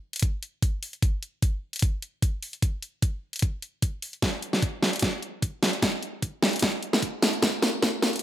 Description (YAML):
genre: heavy wobble dubstep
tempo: 150 BPM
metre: 4/4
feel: swing 54% on 16ths, half-time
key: none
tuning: none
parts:
  - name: dubstep drum kit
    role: drums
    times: 0.1-8.2 s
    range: hi-hat, snare drum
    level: -24 LUFS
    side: equal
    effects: none
  - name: electronic kick drum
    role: drums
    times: 0.2-7.9 s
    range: none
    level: -25 LUFS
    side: equal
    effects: none
room: moderate plate reverb, RT60 1.0 s, digital ambience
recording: high-pass filter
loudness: -25 LUFS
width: side -12 dB against mid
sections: 0.0-8.2 A section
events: build-up 0.0-8.2; filter sweep 0.0-8.2; drum fill 4.2-8.2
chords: none